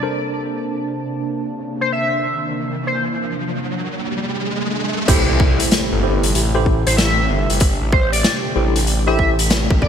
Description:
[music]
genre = glitch hop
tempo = 95 BPM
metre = 4/4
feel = swing 64% on 16ths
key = A phrygian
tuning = A4 = 440 Hz
[part]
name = warm analog pad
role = sustained chords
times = 0.0-9.9 s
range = C3 to A5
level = -26 LUFS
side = right 1 dB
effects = chorus, sidechain pumping
[part]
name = tine electric piano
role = stabs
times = 0.0-9.3 s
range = D4 to C5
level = -24 LUFS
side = left 1 dB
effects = overdrive, fast stereo tremolo, sidechain pumping, ping-pong delay
[part]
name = riser and impact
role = sound effects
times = 1.8-7.6 s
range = none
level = -25 LUFS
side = equal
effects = none
[part]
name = sync lead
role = melody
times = 1.8-3.0, 6.9-9.9 s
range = C5 to E5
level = -22 LUFS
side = equal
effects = analog chorus, ping-pong delay
[part]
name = phased detuned saw bass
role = bass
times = 5.1-9.9 s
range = G1 to C2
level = -19 LUFS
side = equal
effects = phaser, overdrive
[part]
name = electronic kick drum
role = drums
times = 5.1-9.9 s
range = none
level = -16 LUFS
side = equal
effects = overdrive
[part]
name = raw garage drum kit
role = drums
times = 5.1-9.7 s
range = crash cymbal, hi-hat, rim click, snare drum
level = -20 LUFS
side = left 1 dB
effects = low-pass filter on hats, low-pass filter on cymbals, low-pass filter on snare, low-pass filter on room, gated reverb
[sound]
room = light reverb, studio ambience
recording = bright 1980s-style digital production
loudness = -16 LUFS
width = side -8 dB against mid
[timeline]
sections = 0.0-5.1 A section; 5.1-9.9 B section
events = riser 1.8-5.1; drop 5.1-9.9; impact 5.1-7.6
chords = 0.0 Bbmaj9; 5.1 Am7

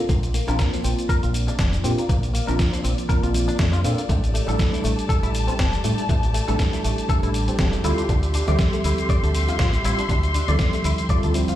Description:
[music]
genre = nu-disco, nu disco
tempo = 120 BPM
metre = 4/4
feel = swing 55% on 16ths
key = D minor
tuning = A4 = 440 Hz
[part]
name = muted studio string section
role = sustained chords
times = 0.0-11.6 s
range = G4 to C6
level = -30 LUFS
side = left 1 dB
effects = sidechain pumping
[part]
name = direct-recorded clean electric guitar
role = riff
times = 0.0-11.5 s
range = E3 to D5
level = -31 LUFS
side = left 3 dB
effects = ensemble chorus, dub echo
[part]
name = fingered electric bass with an envelope filter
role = bass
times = 0.1-11.5 s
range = E1 to Bb2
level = -23 LUFS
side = equal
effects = none
[part]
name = dusty soul sampler-style drum kit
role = drums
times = 0.1-11.6 s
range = cabasa, hi-hat, snare drum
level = -30 LUFS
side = equal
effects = none
[part]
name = electronic kick drum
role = drums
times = 0.1-11.2 s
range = none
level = -22 LUFS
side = equal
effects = none
[part]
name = cabasa, congas and bongos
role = percussion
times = 0.1-11.6 s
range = none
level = -34 LUFS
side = right 3 dB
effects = none
[part]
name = tine electric piano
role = accompaniment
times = 0.5-11.6 s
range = F3 to A5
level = -27 LUFS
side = right 1 dB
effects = wide subtle chorus, sidechain pumping, dub echo
[sound]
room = light reverb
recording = played on a big sound system in a bare room, large studio reverb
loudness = -19 LUFS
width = side -13 dB against mid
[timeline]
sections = 0.0-11.6 A section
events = none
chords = 0.0 Bbmaj7; 4.1 A7sus4; 7.8 Dm11

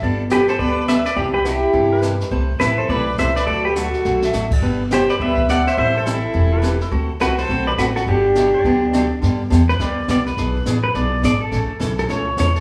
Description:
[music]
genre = country, western swing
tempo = 209 BPM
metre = 4/4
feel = swing 61% on 8ths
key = G major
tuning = A4 = 444 Hz
[part]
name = clean lap steel guitar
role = second line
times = 0.0-9.2 s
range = E4 to E5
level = -31 LUFS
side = equal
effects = none
[part]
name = picked steel-string acoustic guitar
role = accompaniment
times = 0.0-12.5 s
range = C3 to B4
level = -25 LUFS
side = equal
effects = none
[part]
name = upright bass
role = bass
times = 0.0-12.6 s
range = E1 to G2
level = -24 LUFS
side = equal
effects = none
[part]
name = jazz brush drum kit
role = drums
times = 0.0-12.6 s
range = brushed snare drum, crash cymbal, hi-hat, kick drum, snare drum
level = -30 LUFS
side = equal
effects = none
[part]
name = pedal steel guitar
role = melody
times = 0.3-12.6 s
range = D4 to F#5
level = -21 LUFS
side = equal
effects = none
[part]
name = clear fiddle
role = second line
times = 0.3-9.1 s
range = D4 to D5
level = -33 LUFS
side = equal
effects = none
[sound]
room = wet stone room reverb, RT60 1.4 s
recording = band playing live in one room, studio reverb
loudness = -18 LUFS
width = mono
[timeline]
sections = 0.0-9.2 A section; 9.2-12.6 B section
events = drum fill 4.0; pedal steel guitar solo 9.2-12.6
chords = 0.0 Gadd9; 1.2 Cadd9; 2.3 Amadd9; 3.5 D; 4.6 G; 5.8 Am7; 6.9 D7; 8.1 Gmaj7; 9.2 G; 10.4 E7; 11.5 A

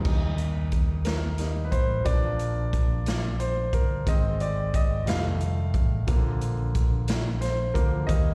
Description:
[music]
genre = slow gospel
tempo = 60 BPM (dotted quarters)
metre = 6/8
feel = straight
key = Eb major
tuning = A4 = 441 Hz
[part]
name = clear grand piano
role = accompaniment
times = 0.0-8.3 s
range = D3 to F5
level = -33 LUFS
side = equal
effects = slapback echo
[part]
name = fingered electric bass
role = bass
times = 0.0-8.3 s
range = F1 to Eb2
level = -30 LUFS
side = equal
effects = none
[part]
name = swinging big-band drum kit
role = drums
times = 0.0-8.2 s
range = crash cymbal, hi-hat, kick drum, snare drum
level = -29 LUFS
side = equal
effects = none
[sound]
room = little or no reverb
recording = live gig heard through the venue's PA, recital hall reverb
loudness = -26 LUFS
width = mono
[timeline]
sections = 0.1-8.3 A section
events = grand piano solo 0.1-8.3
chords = 0.1 Eb; 2.1 Bb; 4.1 Ab; 5.1 F7; 6.1 Bb

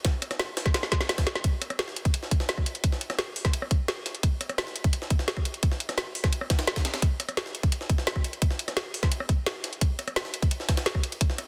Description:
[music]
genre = drum and bass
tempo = 172 BPM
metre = 4/4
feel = straight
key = none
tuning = none
[part]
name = drum and bass drum kit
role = drums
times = 0.0-11.5 s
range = hi-hat, rim click, snare drum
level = -32 LUFS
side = equal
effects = none
[part]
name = electronic kick drum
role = drums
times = 0.0-11.3 s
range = none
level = -27 LUFS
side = equal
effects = none
[part]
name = jungle sampler-style drum kit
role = drums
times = 0.0-11.5 s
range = ride cymbal, snare drum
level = -38 LUFS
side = equal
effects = high-pass filter on cymbals, high-pass filter on snare, high-pass filter on room
[sound]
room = light reverb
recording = dense, heavily limited modern master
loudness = -28 LUFS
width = mono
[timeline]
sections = 0.0-11.5 A section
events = drum fill 0.7-1.4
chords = none

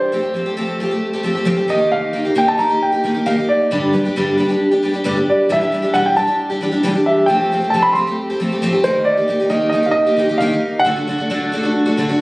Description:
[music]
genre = rock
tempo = 134 BPM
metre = 4/4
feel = straight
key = unclear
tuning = A4 = 440 Hz
[part]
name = warm grand piano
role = melody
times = 0.0-12.1 s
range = C5 to C6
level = -17 LUFS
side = right 1 dB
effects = none
[part]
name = picked twelve-string acoustic guitar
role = accompaniment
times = 0.0-12.2 s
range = E2 to G4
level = -17 LUFS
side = equal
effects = none
[sound]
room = light reverb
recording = recorded on a phone in the room, club reverb, compression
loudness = -14 LUFS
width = side -22 dB against mid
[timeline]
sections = 0.0-12.2 A section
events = none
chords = 0.1 Fadd9; 1.7 Eb; 3.7 G; 5.5 Em7; 7.3 Fadd9; 8.9 Eb; 10.9 D

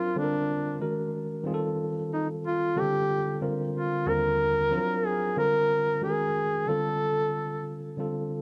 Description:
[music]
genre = R&B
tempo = 92 BPM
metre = 4/4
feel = swing 54% on 16ths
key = unclear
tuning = A4 = 440 Hz
[part]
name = clear duduk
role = melody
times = 0.0-7.7 s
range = D4 to Bb4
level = -29 LUFS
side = equal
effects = none
[part]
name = tine electric piano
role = accompaniment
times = 0.0-8.4 s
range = Eb2 to A#4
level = -32 LUFS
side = equal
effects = overdrive
[sound]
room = light reverb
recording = none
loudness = -28 LUFS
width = mono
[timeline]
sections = 0.0-8.0 A section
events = none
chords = 0.2 Gm7; 0.8 Gbadd9; 1.5 F9; 2.8 F69/D; 3.4 Bb69; 4.1 Ebmaj9; 4.7 D7alt; 5.4 Gm7; 6.0 Gbadd9; 6.7 F69

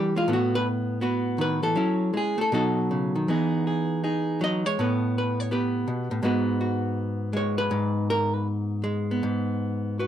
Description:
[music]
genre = solo jazz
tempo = 161 BPM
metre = 4/4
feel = swing 66% on 8ths, rubato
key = G# minor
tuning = A4 = 439 Hz
[part]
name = archtop guitar, miked and amplified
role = solo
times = 0.0-10.1 s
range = G#2 to D#5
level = -23 LUFS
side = equal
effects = none
[sound]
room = little or no reverb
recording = dry, close 1970s-style studio recording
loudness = -23 LUFS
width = side -10 dB against mid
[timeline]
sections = 0.0-9.2 A section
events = hollow-body jazz guitar solo 0.0-10.1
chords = 0.3 Asus2; 1.8 F#m7; 2.5 B7; 3.3 Emaj7; 4.8 A9; 6.2 G#m7; 9.2 G#m

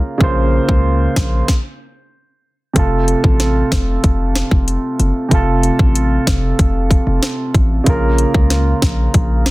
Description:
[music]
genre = dancehall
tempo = 94 BPM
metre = 4/4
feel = straight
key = unclear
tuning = A4 = 439 Hz
[part]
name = dark grand piano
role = accompaniment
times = 0.0-9.5 s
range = C3 to C5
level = -18 LUFS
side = right 2 dB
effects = none
[part]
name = hard-hitting 808-style bass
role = bass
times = 0.2-9.5 s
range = F1 to Db2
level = -16 LUFS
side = equal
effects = none
[part]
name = island pop drum kit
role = drums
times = 0.2-9.5 s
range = hi-hat, kick drum, snare drum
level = -14 LUFS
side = equal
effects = overdrive
[sound]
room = digital ambience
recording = dense, heavily limited modern master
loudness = -12 LUFS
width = side -20 dB against mid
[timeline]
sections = 0.0-2.8 A section; 2.8-9.5 B section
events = stop 1.5-2.8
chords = 0.0 Bbm; 2.8 F; 7.9 Bbm

